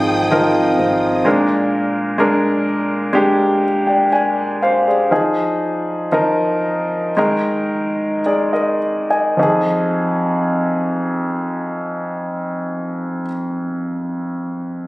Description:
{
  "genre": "pop",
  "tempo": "52-64 BPM",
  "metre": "4/4",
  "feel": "straight",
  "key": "F dorian",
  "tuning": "A4 = 440 Hz",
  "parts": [
    { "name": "clear concert grand piano", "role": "accompaniment", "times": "0.0-14.9 s", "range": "F2 to Ab5", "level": "-16 LUFS", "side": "equal", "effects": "none" },
    { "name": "rich studio string section", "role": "sustained chords", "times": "0.0-1.3 s", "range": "Ab4 to Eb6", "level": "-23 LUFS", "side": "equal", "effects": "none" },
    { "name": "fingerpicked steel-string acoustic guitar", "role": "arpeggios", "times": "0.0-1.9 s", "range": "F2 to F4", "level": "-19 LUFS", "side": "right 1 dB", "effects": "none" },
    { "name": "vintage muted fingered electric bass", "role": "bass", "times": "0.0-1.2 s", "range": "Ab1", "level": "-29 LUFS", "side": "equal", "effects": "none" },
    { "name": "downlifter", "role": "sound effects", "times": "0.0-1.3 s", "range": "none", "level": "barely audible", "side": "none", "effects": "none" }
  ],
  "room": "light reverb, small room reverb",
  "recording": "recorded on a phone in the room, studio reverb",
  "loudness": "-15 LUFS",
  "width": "side -20 dB against mid",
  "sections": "0.0-9.4 A section; 9.4-14.0 B section",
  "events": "slowing down 1.3-9.4",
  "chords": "0.0 Fm7; 1.3 Bb7; 5.1 Fm7; 7.2 Ebsus4; 9.4 Fm7"
}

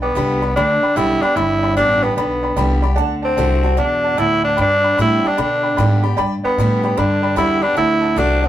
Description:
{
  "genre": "rockabilly",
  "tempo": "150 BPM",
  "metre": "4/4",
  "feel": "swing 65% on 8ths",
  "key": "G major",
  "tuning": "A4 = 441 Hz",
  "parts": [
    { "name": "raspy tenor saxophone", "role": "melody", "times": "0.0-8.5 s", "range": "B3 to E4", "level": "-17 LUFS", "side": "equal", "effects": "none" },
    { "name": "bright upright piano", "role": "accompaniment", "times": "0.0-8.5 s", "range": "D5 to D6", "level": "-23 LUFS", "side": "right 1 dB", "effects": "none" },
    { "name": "picked steel-string acoustic guitar", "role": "accompaniment", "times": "0.0-8.5 s", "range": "G2 to G4", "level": "-23 LUFS", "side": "left 1 dB", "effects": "none" },
    { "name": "upright bass", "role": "bass", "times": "0.0-8.5 s", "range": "G1 to B2", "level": "-20 LUFS", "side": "equal", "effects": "none" }
  ],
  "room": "moderate booth ambience, RT60 0.3 s",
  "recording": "rough rehearsal-room recording, tube saturation",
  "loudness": "-14 LUFS",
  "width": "side -12 dB against mid",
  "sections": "0.0-8.5 A section",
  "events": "none",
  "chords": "0.0 G; 3.0 D7; 4.6 G; 7.8 D7"
}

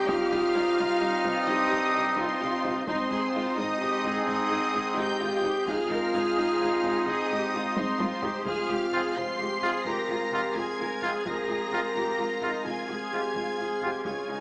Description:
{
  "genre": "cinematic, epic orchestral film score",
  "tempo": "86 BPM (dotted quarters)",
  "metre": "12/8",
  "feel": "straight",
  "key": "unclear",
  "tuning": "A4 = 440 Hz",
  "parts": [
    { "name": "clear studio violin section", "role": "melody", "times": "0.0-14.4 s", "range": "C6 to C7", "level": "-36 LUFS", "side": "equal", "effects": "none" },
    { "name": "rich symphonic violin section", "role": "second line", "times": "0.0-14.4 s", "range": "C5 to C6", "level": "-37 LUFS", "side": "equal", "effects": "none" },
    { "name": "bright trombone section", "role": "sustained chords", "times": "0.0-13.9 s", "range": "G2 to C4", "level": "-36 LUFS", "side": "equal", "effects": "none" },
    { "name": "mellow French horn section", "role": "sustained chords", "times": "0.0-14.4 s", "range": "C4 to C5", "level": "-30 LUFS", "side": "equal", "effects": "none" },
    { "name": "pipe organ, plenum", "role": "sustained chords", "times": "0.0-14.4 s", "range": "G3 to F5", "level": "-34 LUFS", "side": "equal", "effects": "none" },
    { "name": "bright trumpet", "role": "stabs", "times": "0.0-13.9 s", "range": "Eb4 to F4", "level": "-31 LUFS", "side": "equal", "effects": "none" },
    { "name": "rich symphonic cello section", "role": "bass", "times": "0.0-14.4 s", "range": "Eb4 to Bb4", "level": "-33 LUFS", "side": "equal", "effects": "none" },
    { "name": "rich symphonic viola section", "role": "accompaniment", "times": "0.1-14.4 s", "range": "G3 to F4", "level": "-36 LUFS", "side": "equal", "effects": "none" },
    { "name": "rich symphonic double bass section", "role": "bass", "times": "0.1-14.4 s", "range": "F1 to Db2", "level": "-41 LUFS", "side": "equal", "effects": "none" },
    { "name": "solo taiko drums", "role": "drums", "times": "0.1-14.4 s", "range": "none", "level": "-38 LUFS", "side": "equal", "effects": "none" }
  ],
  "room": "wet scoring stage reverb, RT60 1.6 s",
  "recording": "small speaker sound",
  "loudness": "-25 LUFS",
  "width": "side -27 dB against mid",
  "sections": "0.0-14.4 A section",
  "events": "drum fill 7.8-8.5",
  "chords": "0.0 Cm; 2.9 Ab; 8.5 Fm"
}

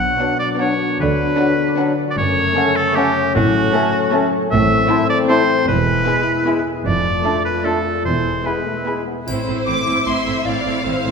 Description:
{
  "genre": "cinematic, playful, whimsical film cue",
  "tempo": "152 BPM",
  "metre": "3/4",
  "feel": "straight",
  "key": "B minor, A minor from 4.5 s",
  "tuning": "A4 = 438 Hz",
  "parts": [
    { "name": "bright oboe", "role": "second line", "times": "0.0-9.1 s", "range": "F#4 to F#5", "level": "-20 LUFS", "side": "right 1 dB", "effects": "none" },
    { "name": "warm French horn section", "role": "sustained chords", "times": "0.0-9.2 s", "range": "F#3 to F4", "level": "-22 LUFS", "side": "left 3 dB", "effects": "none" },
    { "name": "concert harp", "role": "arpeggios", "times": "0.0-11.1 s", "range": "E2 to E6", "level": "-23 LUFS", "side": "left 7 dB", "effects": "none" },
    { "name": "rich studio cello section", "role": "bass", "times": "0.0-11.1 s", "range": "E2 to D3", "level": "-24 LUFS", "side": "right 3 dB", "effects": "none" },
    { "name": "rich studio double bass section", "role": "bass", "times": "0.0-11.1 s", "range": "E1 to D2", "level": "-26 LUFS", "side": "right 4 dB", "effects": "none" },
    { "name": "clear studio violin section", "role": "melody", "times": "0.2-11.1 s", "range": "F5 to D6", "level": "-27 LUFS", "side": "left 2 dB", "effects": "none" },
    { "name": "mellow hollow concert flute", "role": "second line", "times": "0.2-8.9 s", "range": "F#5 to C6", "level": "-31 LUFS", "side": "left 3 dB", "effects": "none" },
    { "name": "warm clarinet", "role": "second line", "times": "0.2-9.0 s", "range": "C#4 to F4", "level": "-27 LUFS", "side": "left 1 dB", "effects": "none" },
    { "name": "warm studio violin section", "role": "second line", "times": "0.2-11.1 s", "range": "C#4 to E5", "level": "-27 LUFS", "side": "equal", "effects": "none" },
    { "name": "rich studio viola section", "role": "accompaniment", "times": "0.2-11.1 s", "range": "A3 to E4", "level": "-27 LUFS", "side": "right 3 dB", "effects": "none" },
    { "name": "warm bassoon", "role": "accompaniment", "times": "0.2-9.0 s", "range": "F#3 to A3", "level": "-28 LUFS", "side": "right 3 dB", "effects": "none" },
    { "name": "triangle", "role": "percussion", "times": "9.3-10.0 s", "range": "none", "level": "-39 LUFS", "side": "left 4 dB", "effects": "none" },
    { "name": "xylophone with soft rubber mallets", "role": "melody", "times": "9.7-11.1 s", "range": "F5 to D6", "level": "-31 LUFS", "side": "left 4 dB", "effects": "none" }
  ],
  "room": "wet scoring stage reverb, RT60 1.8 s",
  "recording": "minimal, uncompressed stereo recording",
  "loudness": "-15 LUFS",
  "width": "side -5 dB against mid",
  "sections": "0.0-9.3 A section; 9.3-11.1 B section",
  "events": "none",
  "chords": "0.0 Bm; 1.0 Bm/D; 2.2 F#m; 3.4 F#m/A; 4.5 Am; 5.7 E; 6.9 Dm/F; 8.1 E; 9.3 Am"
}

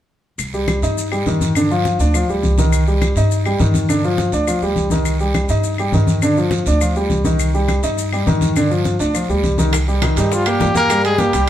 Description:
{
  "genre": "Afro-Cuban jazz",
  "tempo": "206 BPM",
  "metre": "4/4",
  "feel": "straight",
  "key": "C minor",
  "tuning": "A4 = 445 Hz",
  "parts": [
    { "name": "upright bass", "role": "bass", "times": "0.4-11.5 s", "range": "C2 to G2", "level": "-19 LUFS", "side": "equal", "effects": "none" },
    { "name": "claves", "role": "percussion", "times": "0.4-11.0 s", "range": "none", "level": "-31 LUFS", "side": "left 6 dB", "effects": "none" },
    { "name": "congas", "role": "percussion", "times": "0.4-11.5 s", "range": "none", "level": "-23 LUFS", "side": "left 2 dB", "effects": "none" },
    { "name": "guiro", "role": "percussion", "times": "0.4-11.5 s", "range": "none", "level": "-32 LUFS", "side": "right 5 dB", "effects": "none" },
    { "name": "maracas", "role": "percussion", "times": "0.4-11.5 s", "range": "none", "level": "-31 LUFS", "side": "left 6 dB", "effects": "none" },
    { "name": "warm grand piano", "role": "accompaniment", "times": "0.5-11.5 s", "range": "D3 to G5", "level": "-18 LUFS", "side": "equal", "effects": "none" },
    { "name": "bongos", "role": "percussion", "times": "9.7-11.3 s", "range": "none", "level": "-30 LUFS", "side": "left 6 dB", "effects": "none" },
    { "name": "timbales", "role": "percussion", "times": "9.7-11.5 s", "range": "none", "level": "-26 LUFS", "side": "right 5 dB", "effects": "none" },
    { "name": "mellow trumpet", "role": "melody", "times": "10.2-11.5 s", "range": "Eb4 to Bb4", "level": "-17 LUFS", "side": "left 1 dB", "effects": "none" },
    { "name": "bright trombone", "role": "second line", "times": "10.2-11.5 s", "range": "Eb3 to Bb3", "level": "-24 LUFS", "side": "left 4 dB", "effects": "none" }
  ],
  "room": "moderate stone room reverb, RT60 1.3 s",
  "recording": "band playing live in one room",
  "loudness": "-14 LUFS",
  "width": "side -11 dB against mid",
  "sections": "0.4-9.7 A section; 9.7-11.5 B section",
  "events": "none",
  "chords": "0.4 Cm; 1.6 G5; 2.7 Cm; 3.9 G5; 5.1 Cm; 6.2 G5; 7.4 Cm; 8.6 G5; 9.7 Cm7; 10.9 Abmaj9"
}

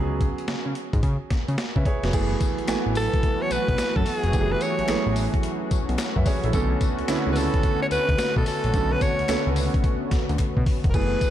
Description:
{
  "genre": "R&B, new jack swing",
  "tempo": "109 BPM",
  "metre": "4/4",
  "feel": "swing 65% on 16ths",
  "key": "F# minor",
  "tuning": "A4 = 440 Hz",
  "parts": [
    { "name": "clear baby grand piano", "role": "accompaniment", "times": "0.0-11.3 s", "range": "D3 to G#5", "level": "-29 LUFS", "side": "right 4 dB", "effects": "none" },
    { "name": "fat analog bass", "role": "bass", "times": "0.0-11.2 s", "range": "E#1 to C#3", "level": "-26 LUFS", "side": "equal", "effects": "none" },
    { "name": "boom bap sampler-style drum kit", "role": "drums", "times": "0.2-11.3 s", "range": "crash cymbal, hi-hat, kick drum, snare drum, tambourine", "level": "-25 LUFS", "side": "equal", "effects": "none" },
    { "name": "warm analog pad", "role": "sustained chords", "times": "2.1-11.3 s", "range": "D3 to F#4", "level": "-30 LUFS", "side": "left 2 dB", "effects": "chorus" },
    { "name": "group handclap", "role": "percussion", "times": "2.7-10.6 s", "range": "none", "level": "-44 LUFS", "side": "left 7 dB", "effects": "none" },
    { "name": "raspy alto saxophone", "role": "melody", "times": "3.0-11.3 s", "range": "G#4 to C#5", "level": "-26 LUFS", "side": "equal", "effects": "none" }
  ],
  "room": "light reverb",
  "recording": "dark, warm production",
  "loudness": "-21 LUFS",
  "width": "side -11 dB against mid",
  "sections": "0.0-2.1 A section; 2.1-11.3 B section",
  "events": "drum fill 10.4-10.9",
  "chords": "0.0 C#7sus4; 2.1 F#m11; 6.5 Bm9"
}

